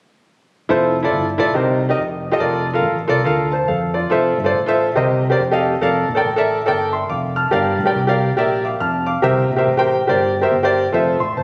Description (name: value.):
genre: uptempo gospel.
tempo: 141 BPM.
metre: 4/4.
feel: swing 62% on 8ths.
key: F major.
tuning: A4 = 435 Hz.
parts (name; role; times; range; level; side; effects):
clear baby grand piano; accompaniment; 0.7-11.4 s; G2 to F6; -18 LUFS; equal; none.
fingered electric bass; bass; 0.7-11.4 s; F1 to F2; -26 LUFS; equal; none.
room: moderate concert hall reverb, RT60 2.2 s.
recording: recorded on a phone in the room, studio reverb.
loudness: -18 LUFS.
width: mono.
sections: 0.7-4.1 A section; 4.1-11.4 B section.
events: none.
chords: 0.7 Fmaj7; 1.6 Cm7; 2.0 Fsus2; 2.4 Bbmaj7/F; 4.1 Fmaj7; 5.0 Cm7; 5.4 F9; 5.8 Bbmaj7/F; 9.2 C7.